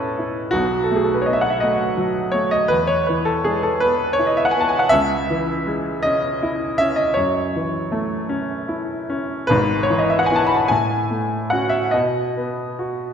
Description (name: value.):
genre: classical, romantic nocturne for solo piano.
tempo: 46-57 BPM (dotted quarters).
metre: 12/8.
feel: rubato.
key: E major.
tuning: A4 = 440 Hz.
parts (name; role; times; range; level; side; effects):
clear grand piano; solo; 0.0-13.1 s; G#1 to B5; -18 LUFS; equal; none.
room: wet concert hall reverb, RT60 1.7 s.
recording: none.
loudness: -17 LUFS.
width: side -7 dB against mid.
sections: 0.0-13.1 A section.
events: none.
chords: 0.0 Amaj7; 0.6 B7; 2.7 E; 4.9 C#m; 7.2 F#m7; 9.5 E/G#; 10.7 F#m/A; 12.0 B.